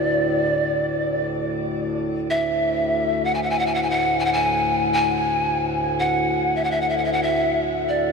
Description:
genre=world meditative, free-time meditation music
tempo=free time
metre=none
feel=none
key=D lydian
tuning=A4 = 438 Hz
part: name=breathy mellow pan flute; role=melody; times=0.0-8.1 s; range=D5 to G#5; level=-21 LUFS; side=equal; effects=shimmer reverb
part: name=hand-pumped harmonium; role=drone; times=0.0-8.1 s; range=D2 to A2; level=-24 LUFS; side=left 1 dB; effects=stereo widening
room=wet huge ambient reverb, RT60 6.0 s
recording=dark, warm production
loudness=-19 LUFS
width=side -4 dB against mid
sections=0.0-8.1 A section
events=none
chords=none

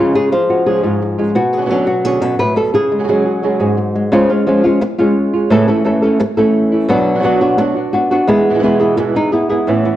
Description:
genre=flamenco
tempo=173 BPM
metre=4/4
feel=straight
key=unclear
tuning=A4 = 440 Hz
part: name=flamenco guitar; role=melody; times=0.0-10.0 s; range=G#2 to B4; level=-13 LUFS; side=equal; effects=none
part: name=flamenco guitar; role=stabs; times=0.0-10.0 s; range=E2 to G#4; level=-18 LUFS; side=right 3 dB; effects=none
room=moderate large studio reverb, RT60 1.5 s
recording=worn, warbling old tape, cassette tape, warbly pitch drift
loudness=-12 LUFS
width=side -13 dB against mid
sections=0.0-4.1 A section; 4.1-9.7 B section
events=none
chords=0.0 C#; 1.4 Bmadd9; 2.7 C#sus4; 4.1 C#; 5.5 A; 6.9 Bm; 8.3 E

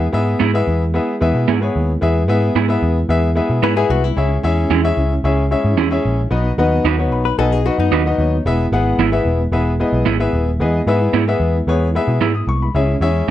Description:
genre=soul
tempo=112 BPM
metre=4/4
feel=straight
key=E major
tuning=A4 = 439 Hz
part: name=warm upright piano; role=accompaniment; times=0.0-13.3 s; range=B3 to E6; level=-19 LUFS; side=left 2 dB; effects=none
part: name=mellow tonewheel organ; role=sustained chords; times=0.0-13.3 s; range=F#3 to E4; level=-25 LUFS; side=right 1 dB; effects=chorus vibrato, fast rotary speaker
part: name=vintage muted picked electric bass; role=bass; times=0.0-13.3 s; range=D#1 to B2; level=-18 LUFS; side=equal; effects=none
part: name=electric guitar through a small old amp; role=stabs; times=0.4-13.3 s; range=B3 to B4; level=-18 LUFS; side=right 9 dB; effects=none
part: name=hollow-body jazz guitar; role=riff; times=3.6-8.4 s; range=D#4 to B4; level=-21 LUFS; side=left 10 dB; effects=none
room=light reverb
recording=dark, warm production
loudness=-14 LUFS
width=side -12 dB against mid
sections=0.0-13.3 A section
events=upright piano fill 6.8-8.5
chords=0.0 E; 4.2 C#m; 6.3 B; 8.5 E; 12.7 C#m

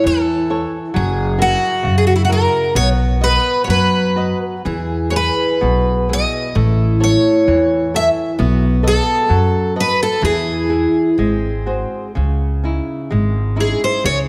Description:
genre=fado-style ballad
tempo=61-67 BPM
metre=2/4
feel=rubato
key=E major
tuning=A4 = 440 Hz
part: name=picked twelve-string acoustic guitar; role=melody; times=0.0-14.2 s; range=E4 to E5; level=-20 LUFS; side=equal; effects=none
part: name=picked twelve-string acoustic guitar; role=second line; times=0.0-12.1 s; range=B#3 to G#4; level=-24 LUFS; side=equal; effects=none
part: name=flamenco guitar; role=accompaniment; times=0.0-14.3 s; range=B2 to D#5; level=-25 LUFS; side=equal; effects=none
part: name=upright bass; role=bass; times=0.1-14.3 s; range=F#1 to F#2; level=-20 LUFS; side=equal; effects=none
room=moderate concert hall reverb, RT60 2.3 s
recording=none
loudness=-16 LUFS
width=mono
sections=0.0-12.2 A section; 12.2-14.3 B section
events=none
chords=0.0 A; 1.0 F#7; 2.8 B; 4.7 E; 6.6 A; 8.4 B7; 10.2 E; 11.2 G#7; 12.2 C#madd9

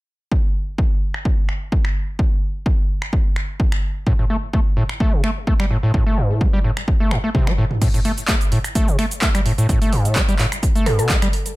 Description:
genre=acid house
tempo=128 BPM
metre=4/4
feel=swing 53% on 16ths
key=A minor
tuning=A4 = 442 Hz
part: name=electronic kick drum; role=drums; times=0.3-11.2 s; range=none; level=-18 LUFS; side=equal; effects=overdrive
part: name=punchy analog drum machine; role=drums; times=1.1-11.5 s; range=crash cymbal, finger snaps, handclaps, hi-hat, shaker, toms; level=-25 LUFS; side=equal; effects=overdrive, low-pass filter on snare, low-pass filter on toms, low-pass filter on hats, low-pass filter on cymbals, low-pass filter on perc, low-pass filter on room
part: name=overdriven acid bass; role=riff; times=4.1-11.3 s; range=G2 to A3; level=-20 LUFS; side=equal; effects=ping-pong delay
part: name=mallet-like synth pluck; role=melody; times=10.9-11.1 s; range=A4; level=-24 LUFS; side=equal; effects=chorus, digital delay
room=light reverb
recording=none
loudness=-16 LUFS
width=side -19 dB against mid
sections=0.3-7.8 A section; 7.8-11.6 B section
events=drum fill 7.3-7.8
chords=none

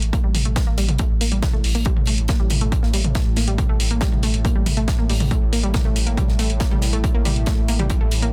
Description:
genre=driving peak-time techno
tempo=139 BPM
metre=4/4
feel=straight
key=unclear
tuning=A4 = 440 Hz
part: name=warm sub bass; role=bass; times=0.0-8.3 s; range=A1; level=-25 LUFS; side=equal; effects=overdrive, sidechain pumping, low-pass filter
part: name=deep dark ambient pad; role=drone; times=0.1-8.3 s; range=A2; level=-33 LUFS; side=equal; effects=chorus, built-in reverb, sidechain pumping
part: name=techno drum kit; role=drums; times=0.0-8.3 s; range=hi-hat, toms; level=-28 LUFS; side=equal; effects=sidechain pumping on hats, sidechain pumping on toms
part: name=unison pluck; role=riff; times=0.1-8.3 s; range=G3 to Bb3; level=-29 LUFS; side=equal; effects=tube saturation, sidechain pumping, digital delay
part: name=electronic kick drum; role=drums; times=0.1-8.0 s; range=none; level=-23 LUFS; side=equal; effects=none
part: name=modern studio drum kit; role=drums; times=0.1-8.2 s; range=hi-hat, snare drum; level=-35 LUFS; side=equal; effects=high-pass filter on hats, high-pass filter on snare, high-pass filter on room
room=little or no reverb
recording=dense, heavily limited modern master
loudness=-20 LUFS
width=mono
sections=0.0-8.3 A section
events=none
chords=0.0 Gmadd9/A

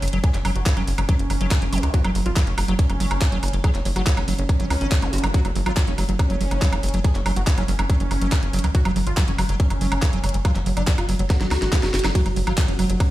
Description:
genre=psychedelic trance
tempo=141 BPM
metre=4/4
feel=straight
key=unclear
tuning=A4 = 440 Hz
part: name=wide unison lead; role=melody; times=0.0-13.1 s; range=F#3 to G#4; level=-28 LUFS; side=right 1 dB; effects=phaser, sidechain pumping, tape echo
part: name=liquid acid bass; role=riff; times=0.0-13.0 s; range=F#3 to F#4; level=-29 LUFS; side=right 1 dB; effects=chorus, auto-pan, cassette tape, sidechain pumping, dub echo
part: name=tight sequencer bass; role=bass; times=0.0-13.0 s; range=F#1 to C#2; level=-23 LUFS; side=equal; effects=none
part: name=garage drum kit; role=drums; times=0.0-13.1 s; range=handclaps, hi-hat, ride cymbal, snare drum, woodblock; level=-28 LUFS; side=right 1 dB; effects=overdrive
part: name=impact and zap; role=sound effects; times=1.7-1.8, 5.0-5.1 s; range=none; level=-36 LUFS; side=left 1 dB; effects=none
part: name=electronic kick drum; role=drums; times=0.2-13.1 s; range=none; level=-19 LUFS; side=equal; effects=overdrive
part: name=bubbling stepped-filter texture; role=sustained chords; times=12.4-13.1 s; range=F#3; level=-30 LUFS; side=right 3 dB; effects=chorus, built-in reverb, sidechain pumping
room=little or no reverb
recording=played on a big sound system in a bare room, stone room reverb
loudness=-18 LUFS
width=side -15 dB against mid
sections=0.0-13.1 A section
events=impact 0.0; drum fill 11.3-12.2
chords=0.0 F#5

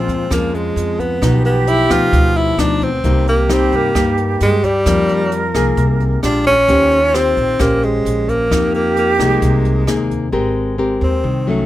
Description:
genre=bossa nova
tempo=132 BPM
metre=4/4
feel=straight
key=F minor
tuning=A4 = 439 Hz
part: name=breathy tenor saxophone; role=melody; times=0.0-11.7 s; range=G3 to F4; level=-16 LUFS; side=equal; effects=none
part: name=concert flute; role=second line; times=0.0-10.1 s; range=F4 to Bb4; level=-21 LUFS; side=right 3 dB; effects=none
part: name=nylon-string guitar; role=accompaniment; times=0.0-11.7 s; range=F2 to C5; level=-19 LUFS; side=left 3 dB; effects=none
part: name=upright bass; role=bass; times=0.0-11.7 s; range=Ab1 to G2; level=-19 LUFS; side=equal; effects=none
part: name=jazz brush drum kit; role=drums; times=0.1-10.2 s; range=hi-hat, kick drum, rim click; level=-23 LUFS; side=equal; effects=none
room=light reverb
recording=minimal, uncompressed stereo recording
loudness=-13 LUFS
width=side -14 dB against mid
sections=0.0-10.3 A section; 10.3-11.7 B section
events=tenor saxophone solo 10.3-11.7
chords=0.0 Bbm7; 1.2 G7b13/B; 3.0 Cm7; 4.9 Fm11; 6.2 Bb6; 6.7 Eb13; 8.5 Fm11; 10.3 Abmaj9

